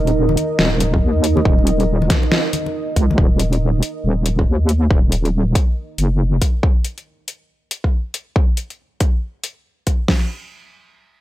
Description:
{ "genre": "deep dubstep", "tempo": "139 BPM", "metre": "4/4", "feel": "swing 61% on 16ths, half-time", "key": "unclear", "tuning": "A4 = 439 Hz", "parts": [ { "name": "dark analog pad", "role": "sustained chords", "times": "0.0-6.6 s", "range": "Eb4 to Eb5", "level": "-23 LUFS", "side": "right 3 dB", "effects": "chorus" }, { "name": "wobble bass", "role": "bass", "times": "0.0-6.4 s", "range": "Eb1 to Eb2", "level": "-16 LUFS", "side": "equal", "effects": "chorus" }, { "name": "dubstep drum kit", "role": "drums", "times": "0.1-10.0 s", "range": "hi-hat, snare drum", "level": "-21 LUFS", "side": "left 1 dB", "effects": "overdrive" }, { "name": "congas", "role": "percussion", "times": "0.3-3.2 s", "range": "none", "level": "-26 LUFS", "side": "left 3 dB", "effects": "none" }, { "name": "dubstep drum kit", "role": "drums", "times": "0.9-10.2 s", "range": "crash cymbal, kick drum, snare drum", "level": "-16 LUFS", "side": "equal", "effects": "overdrive" } ], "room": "digital ambience", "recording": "dry, gritty hardware recording", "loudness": "-15 LUFS", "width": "side -15 dB against mid", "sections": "0.0-10.1 A section; 10.1-11.2 B section", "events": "none", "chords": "0.0 Eb5; 10.1 N.C." }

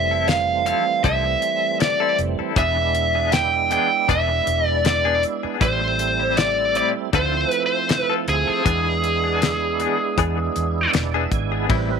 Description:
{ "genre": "straight-eighth soul blues", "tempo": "79 BPM", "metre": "4/4", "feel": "swing 55% on 16ths", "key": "unclear", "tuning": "A4 = 439 Hz", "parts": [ { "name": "biting lead guitar", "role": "melody", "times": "0.0-10.9 s", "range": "G#4 to G5", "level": "-20 LUFS", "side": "equal", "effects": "overdrive" }, { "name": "tonewheel organ", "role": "accompaniment", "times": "0.0-12.0 s", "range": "E3 to G#5", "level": "-27 LUFS", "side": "right 15 dB", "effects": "slow rotary speaker, overdrive, chorus vibrato" }, { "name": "vintage muted fingered electric bass", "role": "bass", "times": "0.0-12.0 s", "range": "E1 to E2", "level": "-25 LUFS", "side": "equal", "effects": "none" }, { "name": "direct-recorded clean electric guitar", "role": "stabs", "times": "0.1-11.9 s", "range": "A2 to A4", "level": "-27 LUFS", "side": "left 13 dB", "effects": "tremolo" }, { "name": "damped 70s drum kit", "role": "drums", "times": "0.3-11.9 s", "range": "hi-hat, kick drum, ride cymbal, snare drum", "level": "-22 LUFS", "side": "left 3 dB", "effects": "none" } ], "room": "light reverb, studio ambience", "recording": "1960s-style stereo with parts hard left and right", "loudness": "-18 LUFS", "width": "side -6 dB against mid", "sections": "0.0-11.7 A section", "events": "tonewheel organ fill 10.6-11.7", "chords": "0.0 Fmaj7; 2.6 E7; 5.6 Am7; 7.1 Dm7; 8.7 E7" }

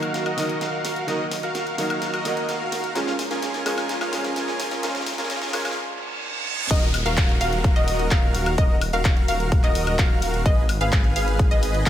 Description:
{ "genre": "EDM, festival progressive house", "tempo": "128 BPM", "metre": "4/4", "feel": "straight", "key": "Eb minor", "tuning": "A4 = 440 Hz", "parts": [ { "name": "clear concert grand piano", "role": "accompaniment", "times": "0.0-6.7 s", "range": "Bb2 to Eb4", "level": "-29 LUFS", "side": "right 2 dB", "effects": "sidechain pumping, dub echo" }, { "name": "dense compressed supersaw", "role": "riff", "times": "0.0-11.9 s", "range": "Db4 to Ab5", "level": "-26 LUFS", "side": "right 1 dB", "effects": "sidechain pumping, low-pass filter, dub echo" }, { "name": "big-room dance drum kit", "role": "drums", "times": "0.0-11.9 s", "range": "crash cymbal, handclaps, hi-hat, snare drum, woodblock", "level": "-29 LUFS", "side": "left 2 dB", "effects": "high-pass filter on hats, small room ambience, high-pass filter on perc, high-pass filter on snare, high-pass filter on cymbals" }, { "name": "riser, reverse cymbal and downlifter", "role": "sound effects", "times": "3.7-10.5 s", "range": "none", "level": "-32 LUFS", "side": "right 3 dB", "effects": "none" }, { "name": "wide unison pluck", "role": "arpeggios", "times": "6.7-11.9 s", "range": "Eb5 to F5", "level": "-28 LUFS", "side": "equal", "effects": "sidechain pumping, dub echo" }, { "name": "detuned saw bass", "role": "bass", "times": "6.7-11.9 s", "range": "Eb1 to Ab1", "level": "-25 LUFS", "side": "equal", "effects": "sidechain pumping" }, { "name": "electronic kick drum", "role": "drums", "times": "6.7-11.9 s", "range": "none", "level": "-19 LUFS", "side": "equal", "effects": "small room ambience" } ], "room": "light reverb, digital ambience", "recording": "high-pass filter", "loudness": "-20 LUFS", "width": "side -11 dB against mid", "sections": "0.0-6.7 A section; 6.7-11.9 B section", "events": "build-up 0.0-6.7; drum fill 0.0-5.8; filter sweep 0.0-6.7; reverse cymbal 5.9-6.7; drop 6.7-11.9", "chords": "0.0 Ebm; 3.0 Bbm7; 6.7 Ebm; 10.5 Abm" }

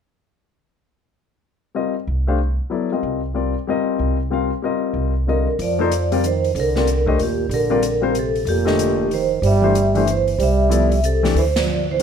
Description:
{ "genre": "modal jazz", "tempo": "188 BPM", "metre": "3/4", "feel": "swing 64% on 8ths", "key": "F mixolydian", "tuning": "A4 = 440 Hz", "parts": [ { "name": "warm baby grand piano", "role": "accompaniment", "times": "1.7-12.0 s", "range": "D3 to F5", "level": "-21 LUFS", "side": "left 6 dB", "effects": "none" }, { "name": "upright bass", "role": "bass", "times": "2.1-12.0 s", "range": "F1 to F2", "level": "-21 LUFS", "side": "right 1 dB", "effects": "none" }, { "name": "vibraphone with medium mallets", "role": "melody", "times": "5.3-12.0 s", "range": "G4 to E5", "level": "-21 LUFS", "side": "right 1 dB", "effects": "none" }, { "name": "breathy trombone", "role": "second line", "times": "5.3-12.0 s", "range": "Bb2 to G3", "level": "-23 LUFS", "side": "right 6 dB", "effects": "none" }, { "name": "swinging big-band drum kit", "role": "drums", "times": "5.6-12.0 s", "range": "hi-hat, kick drum, ride cymbal, snare drum", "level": "-30 LUFS", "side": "left 1 dB", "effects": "none" } ], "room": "light reverb", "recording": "dark, warm production", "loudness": "-17 LUFS", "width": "side -7 dB against mid", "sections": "1.7-5.6 A section; 5.6-12.0 B section", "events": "band accent 11.5", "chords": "1.7 F9sus4; 5.6 F13sus4; 9.4 Gsus4" }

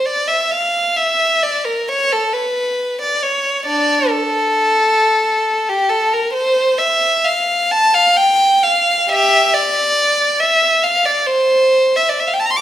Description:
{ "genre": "classical, free, expressive piece for unaccompanied violin", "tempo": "67 BPM", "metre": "4/4", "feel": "uneven beats, rubato", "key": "D minor", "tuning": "A4 = 440 Hz", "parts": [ { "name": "rich violin", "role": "solo", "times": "0.0-12.6 s", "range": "D4 to D6", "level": "-13 LUFS", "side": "equal", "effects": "none" } ], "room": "moderate recital hall reverb, RT60 1.5 s", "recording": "minimal, uncompressed stereo recording", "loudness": "-13 LUFS", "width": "side -12 dB against mid", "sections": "0.0-12.6 A section", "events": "none", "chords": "none" }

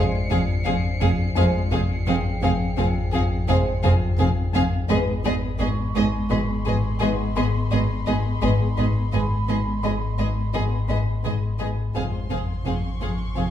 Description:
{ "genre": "cinematic", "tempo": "85 BPM", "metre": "5/4", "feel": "straight", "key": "unclear", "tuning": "A4 = 443 Hz", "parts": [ { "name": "warm studio violin section", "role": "melody", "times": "0.0-13.4 s", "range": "D#5 to F5", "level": "-32 LUFS", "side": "left 3 dB", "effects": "none" }, { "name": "warm symphonic violin section", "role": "second line", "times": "0.0-13.5 s", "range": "Ab4", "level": "-32 LUFS", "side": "left 1 dB", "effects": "none" }, { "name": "dark symphonic viola section", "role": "accompaniment", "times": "0.0-13.4 s", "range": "B3 to C4", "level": "-31 LUFS", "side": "right 1 dB", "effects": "none" }, { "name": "mellow French horn section", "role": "sustained chords", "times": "0.0-12.2 s", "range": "Ab3 to C5", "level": "-31 LUFS", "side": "left 2 dB", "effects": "none" }, { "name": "marimba with medium hard mallets", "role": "riff", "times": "0.0-13.5 s", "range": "F2 to G#3", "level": "-25 LUFS", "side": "left 3 dB", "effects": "none" }, { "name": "warm chamber cello section", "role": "bass", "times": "0.0-13.4 s", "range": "F2 to G#2", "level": "-28 LUFS", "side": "right 2 dB", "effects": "none" }, { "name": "warm symphonic double bass section", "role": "bass", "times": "0.0-13.4 s", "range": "F1 to G#1", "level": "-28 LUFS", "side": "right 3 dB", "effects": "none" }, { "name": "pure sine sub bass", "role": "drone", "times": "0.0-13.5 s", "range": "Ab1", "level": "-30 LUFS", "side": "equal", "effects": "none" }, { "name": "vibraphone with medium hard mallets", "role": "texture", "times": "0.0-12.0 s", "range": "D4 to C#6", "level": "-37 LUFS", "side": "right 3 dB", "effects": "none" }, { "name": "warm symphonic violin section", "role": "texture", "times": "0.0-13.5 s", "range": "B5 to C#7", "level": "-37 LUFS", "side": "left 3 dB", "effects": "none" } ], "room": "wet recital hall reverb, RT60 1.4 s", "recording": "minimal, uncompressed stereo recording", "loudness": "-20 LUFS", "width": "side -10 dB against mid", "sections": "0.0-13.5 A section", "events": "none", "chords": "0.0 Fm; 4.9 G#m; 12.0 Fm" }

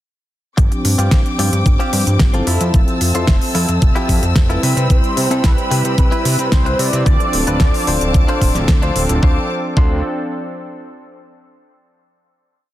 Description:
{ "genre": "nu-disco, nu disco", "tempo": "111 BPM", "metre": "4/4", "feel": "straight", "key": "D dorian", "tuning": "A4 = 440 Hz", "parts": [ { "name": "warm analog pad", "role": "accompaniment", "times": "0.6-10.0 s", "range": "F3 to E5", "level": "-22 LUFS", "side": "equal", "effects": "chorus, sidechain pumping, dub echo" }, { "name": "rich studio string section", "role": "sustained chords", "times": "0.6-9.5 s", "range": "C4 to E6", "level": "-26 LUFS", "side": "left 2 dB", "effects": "sidechain pumping" }, { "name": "direct-recorded clean electric guitar", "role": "riff", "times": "0.6-10.0 s", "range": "C4 to C5", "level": "-26 LUFS", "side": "left 2 dB", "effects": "wide subtle chorus, dub echo" }, { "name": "fat analog bass", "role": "bass", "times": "0.6-10.0 s", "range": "D1 to C3", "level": "-18 LUFS", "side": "equal", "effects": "none" }, { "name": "electronic kick drum", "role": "drums", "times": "0.6-9.9 s", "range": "none", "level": "-14 LUFS", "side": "equal", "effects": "none" }, { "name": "pop drum kit", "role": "drums", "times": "0.6-9.2 s", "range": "hi-hat, snare drum", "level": "-21 LUFS", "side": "equal", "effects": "none" }, { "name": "wide unison lead", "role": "melody", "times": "4.9-8.7 s", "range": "B4 to D5", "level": "-23 LUFS", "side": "right 1 dB", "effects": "ensemble chorus, dub echo" } ], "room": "light reverb", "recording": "dense, heavily limited modern master", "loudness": "-13 LUFS", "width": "side -14 dB against mid", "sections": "0.6-9.2 groove; 9.2-11.4 final chord", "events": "filter sweep on analog synth pad 0.6-9.2", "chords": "0.6 G7sus4; 2.5 Fmaj7; 4.6 Cmaj7; 7.1 Dm7" }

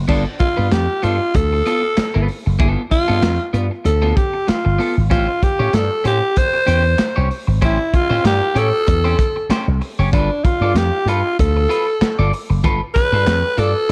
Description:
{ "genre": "funk", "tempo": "96 BPM", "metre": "4/4", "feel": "swing 56% on 16ths", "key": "unclear", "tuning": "A4 = 439 Hz", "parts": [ { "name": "slap bass with an envelope filter", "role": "bass", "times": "0.0-13.9 s", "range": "F#1 to A2", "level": "-20 LUFS", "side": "equal", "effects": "none" }, { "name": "raspy alto saxophone", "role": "melody", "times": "0.1-13.9 s", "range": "D4 to B#4", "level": "-21 LUFS", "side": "equal", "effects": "analog delay" }, { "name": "electric guitar at the edge of break-up", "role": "accompaniment", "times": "0.1-13.9 s", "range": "B3 to D5", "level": "-27 LUFS", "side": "equal", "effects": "subtle chorus" }, { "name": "crunchy breakbeat drum kit", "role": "drums", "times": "0.1-13.9 s", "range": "crash cymbal, handclaps, hi-hat, kick drum, snare drum", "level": "-22 LUFS", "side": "equal", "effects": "none" } ], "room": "small room ambience", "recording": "dark, warm production", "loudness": "-17 LUFS", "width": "mono", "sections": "0.1-13.9 A section", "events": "none", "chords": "0.1 G9; 5.1 A7#9; 10.1 G9" }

